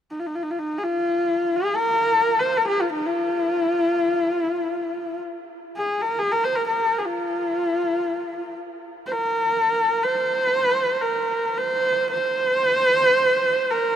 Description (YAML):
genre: mongolian traditional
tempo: free time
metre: none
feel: none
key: F yu mode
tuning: A4 = 435 Hz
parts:
  - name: clear horsehead fiddle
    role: melody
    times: 0.1-14.0 s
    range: Eb4 to C5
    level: -20 LUFS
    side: equal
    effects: none
room: moderate huge ambient reverb, RT60 7.0 s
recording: minimal, uncompressed stereo recording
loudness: -20 LUFS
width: side -9 dB against mid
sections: 0.0-14.0 A section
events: none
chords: none